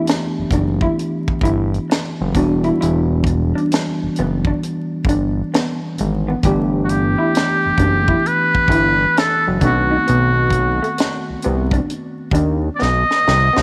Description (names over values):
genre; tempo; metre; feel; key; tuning
R&B, neo-soul; 66 BPM; 4/4; swing 64% on 16ths; E minor; A4 = 439 Hz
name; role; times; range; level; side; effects
electric guitar through a small old amp; second line; 0.0-13.6 s; A3 to G4; -26 LUFS; equal; analog chorus
mellow tine electric piano; accompaniment; 0.0-13.6 s; D#3 to G4; -24 LUFS; equal; none
tight funk drum kit; drums; 0.1-13.6 s; hi-hat, kick drum, snare drum; -23 LUFS; equal; none
fat analog bass; bass; 0.4-13.6 s; E1 to D#2; -21 LUFS; equal; none
trumpet with metal mute; melody; 6.8-13.6 s; F#4 to D#5; -19 LUFS; equal; none
room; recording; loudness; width
moderate echo chamber reverb, RT60 2.5 s; vinyl crackle; -17 LUFS; mono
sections
0.0-13.6 A section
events
drum fill 12.8-13.6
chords
0.0 G6; 2.3 Em7; 6.4 G6; 9.6 B7b9